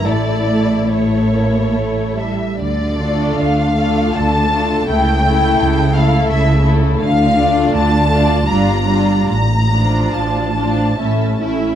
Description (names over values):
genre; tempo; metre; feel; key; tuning
classical, slow romantic movement for string orchestra; 69-87 BPM; 3/4; rubato; D minor; A4 = 440 Hz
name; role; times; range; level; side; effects
warm studio violin section; melody; 0.0-11.4 s; C#5 to Bb5; -20 LUFS; left 1 dB; none
warm studio violin section; second line; 0.0-11.8 s; E4 to E5; -23 LUFS; left 1 dB; none
warm studio viola section; accompaniment; 0.0-11.8 s; F3 to E4; -20 LUFS; equal; none
rich studio double bass section; bass; 0.0-11.7 s; G1 to D2; -18 LUFS; right 1 dB; none
warm studio cello section; bass; 0.0-11.8 s; G2 to E4; -19 LUFS; right 1 dB; none
room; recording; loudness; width
light reverb; dark, warm production; -13 LUFS; side -10 dB against mid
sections
0.0-11.8 A section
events
none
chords
0.1 A; 2.6 Dm; 4.9 A7/C#; 7.0 Dm; 8.5 Gm7; 9.3 Dm/A; 11.0 A